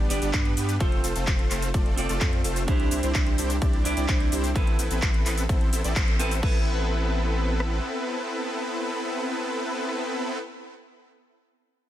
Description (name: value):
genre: EDM, festival progressive house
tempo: 128 BPM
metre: 4/4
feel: straight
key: A minor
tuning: A4 = 443 Hz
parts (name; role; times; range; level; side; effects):
- clean electric guitar; accompaniment; 0.0-10.4 s; B3 to D5; -32 LUFS; right 4 dB; sidechain pumping, digital delay
- supersaw chords; riff; 0.0-10.4 s; G3 to D5; -29 LUFS; equal; sidechain pumping, digital delay
- saturated sub bass; bass; 0.0-7.8 s; F1 to G2; -28 LUFS; equal; sidechain pumping
- house drum kit; drums; 0.1-6.5 s; crash cymbal, handclaps, hi-hat, shaker; -31 LUFS; equal; studio reverb
- big-room dance drum kit; drums; 0.3-7.7 s; kick drum, rim click; -24 LUFS; equal; overdrive, studio reverb
room: little or no reverb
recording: none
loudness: -23 LUFS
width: side -12 dB against mid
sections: 0.0-6.4 A section; 6.4-10.2 B section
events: drop 0.0-6.4; band accent 6.0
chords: 0.0 G; 0.8 F; 2.7 Cadd9; 4.6 Amadd9